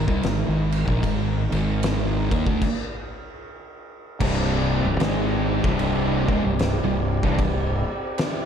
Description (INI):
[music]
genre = stoner and doom metal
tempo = 76 BPM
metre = 4/4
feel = swing 62% on 8ths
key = C minor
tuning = A4 = 440 Hz
[part]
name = mellow tonewheel organ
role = sustained chords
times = 0.0-8.5 s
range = Ab3 to D5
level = -33 LUFS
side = left 1 dB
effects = slow rotary speaker
[part]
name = thick fuzz guitar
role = riff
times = 0.0-7.8 s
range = C2 to Bb3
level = -27 LUFS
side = left 9 dB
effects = distortion
[part]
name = thick fuzz guitar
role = riff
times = 0.0-7.8 s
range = C2 to Bb3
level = -26 LUFS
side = right 8 dB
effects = distortion
[part]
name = fuzz fingered electric bass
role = bass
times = 0.0-7.8 s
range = C1 to Eb2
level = -27 LUFS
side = equal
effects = overdrive
[part]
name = oversized low-tuned drum kit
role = drums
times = 0.1-8.4 s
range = crash cymbal, kick drum, ride cymbal, snare drum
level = -26 LUFS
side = equal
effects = none
[part]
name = tight distorted guitar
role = riff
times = 4.2-7.8 s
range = C2 to Ab3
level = -29 LUFS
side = equal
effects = distortion
[sound]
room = light reverb, small room reverb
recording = dark, warm production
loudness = -20 LUFS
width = side -8 dB against mid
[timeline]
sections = 0.0-4.2 A section; 4.2-8.5 B section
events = stop 2.6-4.2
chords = 0.0 Ab5; 4.2 Cm